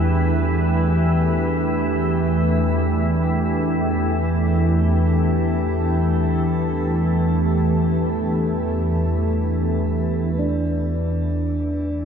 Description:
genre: dark ambient drone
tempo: free time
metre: none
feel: none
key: E minor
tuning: A4 = 440 Hz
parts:
  - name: deep dark ambient pad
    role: sustained chords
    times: 0.0-12.1 s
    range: E3 to B4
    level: -22 LUFS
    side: right 1 dB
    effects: chorus, built-in reverb, shimmer reverb
  - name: organ-like drone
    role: drone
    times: 0.0-12.1 s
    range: E2 to E3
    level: -20 LUFS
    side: equal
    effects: ensemble chorus, built-in reverb
  - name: bronze singing bowl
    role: texture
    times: 0.0-12.1 s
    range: B3 to D5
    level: -31 LUFS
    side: right 1 dB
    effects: shimmer reverb
room: wet cathedral reverb, RT60 5.4 s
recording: dark, warm production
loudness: -18 LUFS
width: side -7 dB against mid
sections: 0.0-10.4 A section; 10.4-12.1 B section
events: none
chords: 0.0 Em

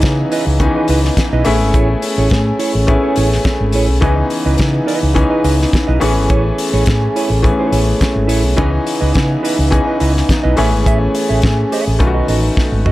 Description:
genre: disco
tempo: 105 BPM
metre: 4/4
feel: straight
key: unclear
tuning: A4 = 440 Hz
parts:
  - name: clear baby grand piano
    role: accompaniment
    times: 0.0-12.9 s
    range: D#3 to G#4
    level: -19 LUFS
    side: left 3 dB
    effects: none
  - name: mellow electric guitar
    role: accompaniment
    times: 0.0-12.9 s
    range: E4 to E5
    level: -22 LUFS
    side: right 6 dB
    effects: none
  - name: warm French horn section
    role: sustained chords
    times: 0.0-12.9 s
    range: C#3 to G#4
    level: -19 LUFS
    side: equal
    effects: none
  - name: fingered electric bass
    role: bass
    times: 0.0-12.9 s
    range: G#1 to C#3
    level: -15 LUFS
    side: equal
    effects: none
  - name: damped 70s drum kit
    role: drums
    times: 0.0-12.9 s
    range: hi-hat, kick drum, snare drum, toms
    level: -18 LUFS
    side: equal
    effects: none
room: little or no reverb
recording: none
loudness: -12 LUFS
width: side -16 dB against mid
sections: 0.0-12.9 A section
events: drum fill 12.6-12.9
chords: 0.0 C#m9; 1.5 Amaj7; 4.0 C#m9; 6.0 Amaj7; 8.6 C#m9; 10.6 Amaj7; 12.0 B7

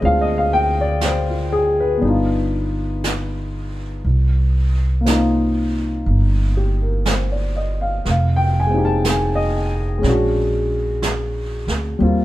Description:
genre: jazz ballad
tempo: 60 BPM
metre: 4/4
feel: swing 66% on 8ths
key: unclear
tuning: A4 = 438 Hz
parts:
  - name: warm upright piano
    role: accompaniment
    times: 0.0-12.2 s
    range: G3 to A5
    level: -20 LUFS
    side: left 1 dB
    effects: none
  - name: upright bass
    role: bass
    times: 0.0-12.2 s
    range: F1 to Eb2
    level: -19 LUFS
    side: equal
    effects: none
  - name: jazz brush drum kit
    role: drums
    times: 0.0-12.2 s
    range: brushed snare drum, hi-hat, snare drum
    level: -27 LUFS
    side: right 2 dB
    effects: none
room: moderate studio reverb, RT60 0.8 s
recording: band playing live in one room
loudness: -16 LUFS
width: side -15 dB against mid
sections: 0.0-12.2 A section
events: none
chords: 0.0 Dm7b5; 2.0 G7b13; 4.0 Cm7; 8.1 Fm9; 10.0 Bb7alt

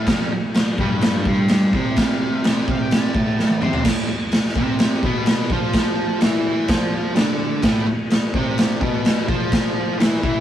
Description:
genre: garage rock duo or trio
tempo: 127 BPM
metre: 4/4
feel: straight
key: A minor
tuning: A4 = 440 Hz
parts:
  - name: octave-fuzz lead guitar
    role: melody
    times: 0.0-3.9 s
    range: F5 to C6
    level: -30 LUFS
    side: left 2 dB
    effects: distortion
  - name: fuzz guitar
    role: riff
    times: 0.0-10.4 s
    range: F2 to F4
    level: -21 LUFS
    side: right 1 dB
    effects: distortion
  - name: raw garage drum kit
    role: drums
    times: 0.1-10.3 s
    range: crash cymbal, kick drum, snare drum, toms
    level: -19 LUFS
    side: equal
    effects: none
room: moderate small room ambience, RT60 0.5 s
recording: rough rehearsal-room recording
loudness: -17 LUFS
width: side -11 dB against mid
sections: 0.0-3.9 A section; 3.9-10.4 B section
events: drum fill 3.4-3.9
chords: 0.0 F5; 3.9 Am

